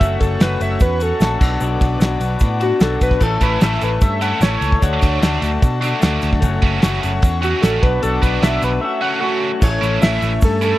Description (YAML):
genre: indie rock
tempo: 150 BPM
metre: 4/4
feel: straight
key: B minor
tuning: A4 = 444 Hz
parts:
  - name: pulse-width lead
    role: melody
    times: 0.0-10.8 s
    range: F#4 to F#5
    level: -21 LUFS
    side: equal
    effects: chorus, slapback echo
  - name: brassy analog pad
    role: sustained chords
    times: 0.0-10.8 s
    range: D4 to D6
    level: -32 LUFS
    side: right 2 dB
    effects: chorus
  - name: electric guitar through a small old amp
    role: riff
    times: 0.0-10.8 s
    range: E3 to A4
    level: -22 LUFS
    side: left 5 dB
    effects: none
  - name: picked electric bass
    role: bass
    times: 0.0-10.7 s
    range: F#1 to B2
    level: -20 LUFS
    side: equal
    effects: none
  - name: cloth-damped thuddy drum kit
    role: drums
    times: 0.0-10.5 s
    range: crash cymbal, hi-hat, kick drum, ride cymbal, snare drum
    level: -16 LUFS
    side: equal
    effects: none
  - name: egg shaker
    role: percussion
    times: 0.0-10.7 s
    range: none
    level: -39 LUFS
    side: right 5 dB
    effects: none
  - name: scooped high-gain guitar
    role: riff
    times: 3.4-10.8 s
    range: B2 to E4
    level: -24 LUFS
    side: right 6 dB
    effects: distortion, analog chorus, slapback echo
room: little or no reverb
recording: dry, close 1970s-style studio recording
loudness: -14 LUFS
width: side -16 dB against mid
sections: 0.0-9.6 A section; 9.6-10.8 B section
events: analog synth lead solo 0.0-9.6; break 8.8-9.6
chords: 0.0 F#m; 1.4 Bm; 3.2 A; 4.8 D; 6.4 F#m; 7.8 Bm; 8.8 F#m; 9.6 A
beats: | 0.00 0.40 0.80 1.20 | 1.60 2.00 2.41 2.81 | 3.21 3.61 4.01 4.41 | 4.81 5.21 5.61 6.01 | 6.42 6.82 7.22 7.62 | 8.02 8.42 8.82 9.22 | 9.62 10.02 10.42